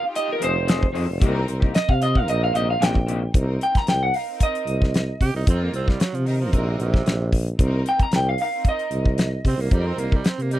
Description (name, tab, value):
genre	straight-eighth soul blues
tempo	113 BPM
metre	4/4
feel	swing 54% on 16ths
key	C minor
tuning	A4 = 441 Hz
part	electric guitar through a small old amp	melody	0.0-10.2 s	Bb4 to Bb5	-24 LUFS	right 1 dB	none
part	warm studio string section	sustained chords	0.0-10.6 s	C4 to Bb4	-34 LUFS	equal	none
part	electric guitar through a small old amp	stabs	0.0-3.3 s	C3 to Ab4	-29 LUFS	left 5 dB	none
part	damped 70s drum kit	drums	0.2-10.6 s	hi-hat, kick drum, snare drum	-20 LUFS	equal	none
part	warm tuba	bass	0.4-10.6 s	F1 to C3	-23 LUFS	equal	none
part	growling tenor saxophone	second line	5.2-10.6 s	C3 to G4	-29 LUFS	right 6 dB	none
room	little or no reverb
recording	dry, close 1970s-style studio recording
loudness	-19 LUFS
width	side -14 dB against mid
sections	0.0-3.3 A section; 3.3-10.6 B section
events	clean electric guitar solo 0.0-3.3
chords	0.0 Fm7; 1.2 Cm7